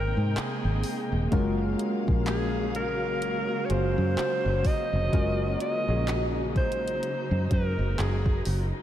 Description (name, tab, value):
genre	contemporary R&B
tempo	63 BPM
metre	4/4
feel	swing 58% on 16ths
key	unclear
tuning	A4 = 442 Hz
part	warm alto saxophone	melody	0.0-8.7 s	Ab4 to Eb5	-31 LUFS	equal	tape echo
part	soft electric-piano-like synth keys	accompaniment	0.0-8.8 s	Ab3 to C5	-33 LUFS	left 2 dB	chorus
part	dark studio string section	sustained chords	0.0-8.8 s	C3 to G5	-33 LUFS	equal	sidechain pumping
part	fingered electric bass	bass	0.0-8.7 s	Eb1 to Ab2	-28 LUFS	equal	none
part	smooth R&B drum kit	drums	0.4-8.7 s	handclaps, hi-hat, kick drum	-31 LUFS	equal	none
room	moderate cathedral reverb, RT60 5.1 s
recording	dreamy mix soaked in reverb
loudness	-24 LUFS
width	side -11 dB against mid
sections	0.0-8.8 A section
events	none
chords	0.0 Abmaj9; 1.3 Gbmaj9